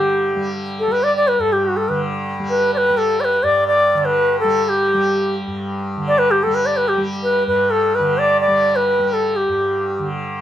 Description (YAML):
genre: indian classical, Hindustani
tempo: 126 BPM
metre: 5/4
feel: straight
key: G raga hamsadhwani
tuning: A4 = 440 Hz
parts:
  - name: bright reedy bansuri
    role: melody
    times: 0.0-10.1 s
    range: F#4 to D5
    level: -15 LUFS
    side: equal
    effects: none
  - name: tanpura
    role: drone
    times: 0.0-10.4 s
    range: G2 to G3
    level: -24 LUFS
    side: equal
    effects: none
room: moderate studio reverb, RT60 0.6 s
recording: none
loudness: -15 LUFS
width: side -11 dB against mid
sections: 0.0-10.4 A section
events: speeding up 0.0-10.4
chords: none